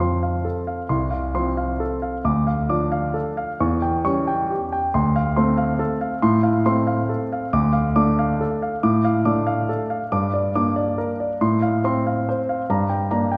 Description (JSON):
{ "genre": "classical, piano waltz", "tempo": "128-149 BPM", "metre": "3/4", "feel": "rubato", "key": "unclear", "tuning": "A4 = 441 Hz", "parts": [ { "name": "warm concert grand piano", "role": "solo", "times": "0.0-13.4 s", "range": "C2 to D6", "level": "-21 LUFS", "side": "equal", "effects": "none" } ], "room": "wet scoring stage reverb, RT60 1.9 s", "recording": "recorded in a church or concert hall", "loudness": "-21 LUFS", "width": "mono", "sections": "0.0-13.4 A section", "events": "none", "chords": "0.0 F; 2.3 Dm; 3.6 C#dim/E; 4.9 Dm7; 7.5 Dm; 10.1 Gm; 11.4 F/A; 12.7 Gm", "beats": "0.00 0.45 | 0.90 1.35 1.81 | 2.26 2.70 3.15 | 3.61 4.06 4.51 | 4.95 5.37 5.80 | 6.22 6.65 7.09 | 7.53 7.96 8.40 | 8.83 9.25 9.68 | 10.11 10.53 10.96 | 11.39 11.83 12.27 | 12.68 13.10" }